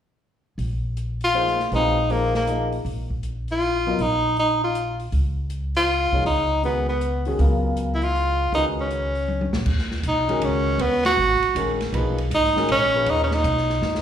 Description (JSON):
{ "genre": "modal jazz", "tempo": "159 BPM", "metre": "3/4", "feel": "swing 65% on 8ths", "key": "Bb phrygian, G# dorian from 9.7 s", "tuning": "A4 = 440 Hz", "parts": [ { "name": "upright bass", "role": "bass", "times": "0.6-14.0 s", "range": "G#1 to F#2", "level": "-25 LUFS", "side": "equal", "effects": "none" }, { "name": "open jazz drum kit", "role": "drums", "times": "0.6-14.0 s", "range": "crash cymbal, hi-hat, kick drum, ride cymbal, snare drum, toms", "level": "-31 LUFS", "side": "equal", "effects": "none" }, { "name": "bright tenor saxophone", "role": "melody", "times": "1.2-14.0 s", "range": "Bb3 to F#4", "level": "-21 LUFS", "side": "equal", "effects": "slapback echo" }, { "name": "warm grand piano", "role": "accompaniment", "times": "1.3-4.0, 6.1-13.4 s", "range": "A#2 to F5", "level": "-27 LUFS", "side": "left 2 dB", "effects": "slapback echo" } ], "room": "light reverb, small room ambience", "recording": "live gig heard through the venue's PA, club reverb", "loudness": "-20 LUFS", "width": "side -9 dB against mid", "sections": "0.6-9.7 A section; 9.7-14.0 B section", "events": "drum fill 9.3-9.7, 13.8; band accent 11.0", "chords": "0.6 Bb9sus4; 5.1 Db9sus4; 9.7 G#m9" }